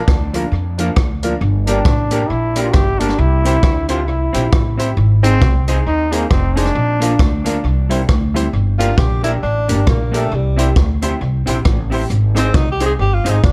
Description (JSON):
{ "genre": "ska", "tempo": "135 BPM", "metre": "4/4", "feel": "swing 59% on 8ths", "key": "G dorian", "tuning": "A4 = 439 Hz", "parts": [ { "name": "bright trombone", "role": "melody", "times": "0.0-7.5 s", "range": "Bb3 to G4", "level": "-23 LUFS", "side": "equal", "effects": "tape echo" }, { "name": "upright bass", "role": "bass", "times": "0.1-13.5 s", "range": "F1 to F2", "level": "-19 LUFS", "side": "equal", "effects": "none" }, { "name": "swinging big-band drum kit", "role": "drums", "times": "0.1-13.5 s", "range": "hi-hat, kick drum, rim click", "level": "-19 LUFS", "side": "equal", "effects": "none" }, { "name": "electric guitar at the edge of break-up", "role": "accompaniment", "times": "0.3-13.4 s", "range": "F3 to Ab4", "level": "-27 LUFS", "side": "equal", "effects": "none" }, { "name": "clear upright piano", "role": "stabs", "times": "0.3-13.4 s", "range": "D4 to C5", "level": "-27 LUFS", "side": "equal", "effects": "tape echo" }, { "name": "breathy tenor saxophone", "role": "melody", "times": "8.8-13.5 s", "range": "G3 to Ab4", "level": "-23 LUFS", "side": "equal", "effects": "none" } ], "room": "light reverb, small room ambience", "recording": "none", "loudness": "-16 LUFS", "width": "mono", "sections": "0.0-8.5 A section; 8.5-13.5 B section", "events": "tenor saxophone solo 8.5-13.5", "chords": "0.0 Bb; 1.4 Gm; 3.2 C; 5.0 Ab; 6.8 Bb; 7.6 C; 8.5 Gm; 10.3 C; 12.1 Ab" }